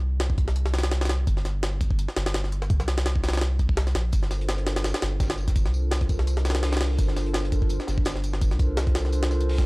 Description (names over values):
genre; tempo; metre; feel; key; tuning
drum and bass, jungle; 168 BPM; 4/4; swing 55% on 16ths; G minor; A4 = 439 Hz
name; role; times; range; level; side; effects
soft dub sub bass; bass; 0.0-9.7 s; G1 to C2; -25 LUFS; equal; none
jungle sampler-style drum kit; drums; 0.2-9.7 s; hi-hat, kick drum, snare drum; -25 LUFS; equal; studio reverb
warbly tape-like pad; sustained chords; 4.4-9.7 s; D4 to C5; -32 LUFS; right 1 dB; chorus, built-in reverb
crunchy breakbeat drum kit; drums; 4.1-9.7 s; hi-hat, snare drum, tambourine; -40 LUFS; equal; high-pass filter on hats, studio reverb, high-pass filter on snare, high-pass filter on perc, high-pass filter on room
room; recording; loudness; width
small room ambience; dry, gritty hardware recording; -22 LUFS; side -23 dB against mid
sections
0.0-9.7 A section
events
none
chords
0.0 Gm11